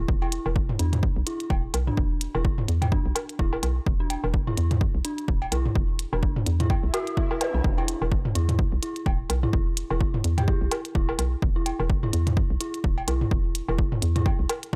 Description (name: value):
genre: minimal techno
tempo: 127 BPM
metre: 4/4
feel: swing 57% on 16ths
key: E minor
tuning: A4 = 443 Hz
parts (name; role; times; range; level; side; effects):
- hollow knocking FM bass; bass; 0.0-14.8 s; D1 to E2; -29 LUFS; equal; tube saturation, sidechain pumping
- electronic kick drum; drums; 0.1-14.8 s; none; -27 LUFS; equal; overdrive
- dark detuned synth bell; riff; 0.2-14.8 s; D4 to B4; -36 LUFS; equal; chorus, sidechain pumping, tape echo
- electronic cowbell, woodblock and toms; percussion; 0.2-14.6 s; none; -32 LUFS; equal; none
- electronic hi-hat; drums; 0.3-14.7 s; none; -34 LUFS; equal; none
- swell and zap; sound effects; 6.9-7.6 s; none; -39 LUFS; equal; none
- vibraphone with medium hard mallets; melody; 10.4-10.7 s; G4; -40 LUFS; equal; analog delay
room: little or no reverb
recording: dry, gritty hardware recording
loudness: -25 LUFS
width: mono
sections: 0.0-14.8 A section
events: swell 6.9-7.6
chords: 0.0 E5